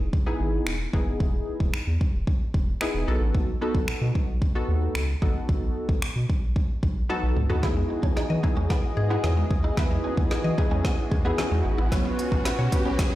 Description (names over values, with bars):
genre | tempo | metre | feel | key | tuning
dance-pop | 112 BPM | 4/4 | straight | E major | A4 = 440 Hz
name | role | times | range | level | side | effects
round analog bass | bass | 0.0-13.0 s | E1 to E3 | -26 LUFS | equal | sidechain pumping
deep house drum kit | drums | 0.1-13.1 s | finger snaps, hi-hat, kick drum, snare drum, toms | -25 LUFS | equal | none
funky polysynth comp | accompaniment | 0.3-13.2 s | B3 to B4 | -30 LUFS | equal | chorus, sidechain pumping
warm analog pad | sustained chords | 7.6-13.2 s | E3 to D#5 | -32 LUFS | equal | chorus, tremolo, sidechain pumping
mallet-like synth pluck | arpeggios | 7.6-13.1 s | E3 to D#5 | -35 LUFS | left 4 dB | chorus, sidechain pumping, ping-pong delay
clean electric guitar | riff | 7.6-13.1 s | B3 to E4 | -36 LUFS | right 4 dB | analog chorus
riser | sound effects | 9.7-13.2 s | none | -38 LUFS | right 2 dB | none
room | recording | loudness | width
digital ambience | played on a big sound system in a bare room, stone room reverb | -22 LUFS | side -15 dB against mid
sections
0.0-7.6 A section; 7.6-13.2 B section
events
drum fill 7.1-7.6, 7.6-13.2; build-up 7.6-13.2; riser 9.7-13.2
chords
0.0 Emaj7; 3.1 B7; 7.6 Emaj7; 11.9 Bsus2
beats
0.13 0.67 | 1.20 1.74 2.28 2.81 | 3.35 3.88 4.42 4.95 | 5.49 6.03 6.56 7.10 | 7.63 8.17 8.70 9.24 | 9.78 10.31 10.85 11.38 | 11.92 12.45 12.99